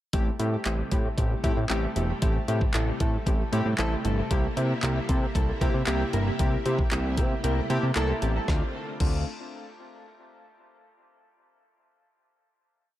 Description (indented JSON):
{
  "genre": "dance-pop",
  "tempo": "115 BPM",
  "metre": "4/4",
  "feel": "straight",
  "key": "unclear",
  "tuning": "A4 = 440 Hz",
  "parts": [
    { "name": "warm analog keys", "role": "accompaniment", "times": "0.1-9.2 s", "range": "A3 to Bb5", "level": "-30 LUFS", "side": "left 1 dB", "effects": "chorus, sidechain pumping, dub echo" },
    { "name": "string machine, violins", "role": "sustained chords", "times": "0.1-8.7 s", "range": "C3 to F4", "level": "-36 LUFS", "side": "equal", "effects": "ensemble chorus, sidechain pumping" },
    { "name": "fat analog bass", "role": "bass", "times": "0.1-9.2 s", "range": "E1 to C3", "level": "-27 LUFS", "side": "equal", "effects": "sidechain pumping" },
    { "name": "smooth R&B drum kit", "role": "drums", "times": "0.1-9.1 s", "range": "crash cymbal, handclaps, hi-hat, kick drum, snare drum", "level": "-27 LUFS", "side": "equal", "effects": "none" }
  ],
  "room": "light reverb",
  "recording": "echo-heavy mix",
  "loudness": "-24 LUFS",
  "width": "side -14 dB against mid",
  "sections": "0.1-8.5 pre-chorus; 8.5-10.6 final chord",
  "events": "synth keys fill 6.9-8.5",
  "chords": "0.1 Am7; 4.3 C7; 8.5 Dm7"
}